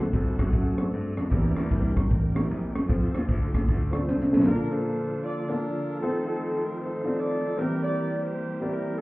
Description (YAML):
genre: uptempo gospel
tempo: 153 BPM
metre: 4/4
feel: swing 65% on 8ths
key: Bb major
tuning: A4 = 436 Hz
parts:
  - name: warm grand piano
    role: accompaniment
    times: 0.0-8.9 s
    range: Bb2 to A5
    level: -31 LUFS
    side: left 1 dB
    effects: none
  - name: bright tonewheel organ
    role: sustained chords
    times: 0.0-9.0 s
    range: D3 to F#5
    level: -32 LUFS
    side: right 1 dB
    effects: slow rotary speaker, chorus vibrato
  - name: gritty slap bass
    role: bass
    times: 0.0-4.4 s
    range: A1 to G2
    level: -27 LUFS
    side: equal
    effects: overdrive
  - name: crisp fusion drum kit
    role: drums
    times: 0.0-4.5 s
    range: hi-hat, kick drum, rim click, snare drum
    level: -25 LUFS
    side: equal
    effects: none
  - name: edgy saxophone section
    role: melody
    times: 4.1-9.0 s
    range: C4 to D5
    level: -30 LUFS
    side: equal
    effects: none
room: light reverb, small room ambience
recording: heard muffled through a wall, club reverb, EQ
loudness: -24 LUFS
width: side -20 dB against mid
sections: 0.0-4.5 A section; 4.5-9.0 B section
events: tonewheel organ solo 0.0-4.5; drum fill 4.1-4.5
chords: 0.0 D7; 1.3 C7; 2.9 F; 4.5 Bbmaj7; 6.0 F7; 7.6 C7/E